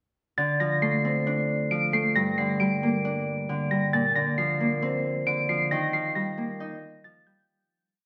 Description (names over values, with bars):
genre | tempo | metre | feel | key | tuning
hip hop | 135 BPM | 4/4 | half-time | D phrygian | A4 = 439 Hz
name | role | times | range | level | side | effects
glassy synth bell | melody | 0.4-7.4 s | G6 to D7 | -30 LUFS | equal | chorus, low-pass filter, digital delay
Celtic harp | accompaniment | 0.4-8.1 s | G2 to Eb4 | -28 LUFS | equal | low-pass filter
room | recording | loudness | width
wet scoring stage reverb, RT60 1.5 s | none | -26 LUFS | mono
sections
0.4-7.5 hook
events
fade-out 5.7-7.5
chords
0.4 Dm7; 2.2 Gm; 3.9 Bbadd9; 5.7 Ebadd9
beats
| 0.38 0.82 1.27 1.71 | 2.16 2.60 3.04 3.49 | 3.93 4.38 4.82 5.27 | 5.71 6.16 6.60 7.04